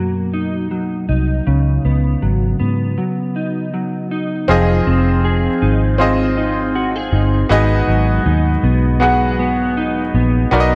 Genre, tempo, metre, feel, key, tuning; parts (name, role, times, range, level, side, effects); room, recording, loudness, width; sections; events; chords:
indie pop, bedroom pop; 80 BPM; 4/4; swing 55% on 16ths; A4 = 440 Hz
mellow electric guitar; accompaniment; 0.0-10.8 s; G#2 to Ab4; -21 LUFS; equal; analog chorus, vibrato effect
vintage muted fingered electric bass; bass; 0.0-10.8 s; F1 to G#2; -19 LUFS; equal
bright upright piano; accompaniment; 4.5-10.8 s; B3 to F#5; -21 LUFS; equal; cassette tape
moderate lush hall reverb, RT60 2.7 s; dreamy mix soaked in reverb; -16 LUFS; mono
0.0-4.5 A section; 4.5-10.8 B section
break 3.0-4.5
0.0 Bmaj7; 1.5 C#9sus4; 4.5 Fm7; 7.5 G#m7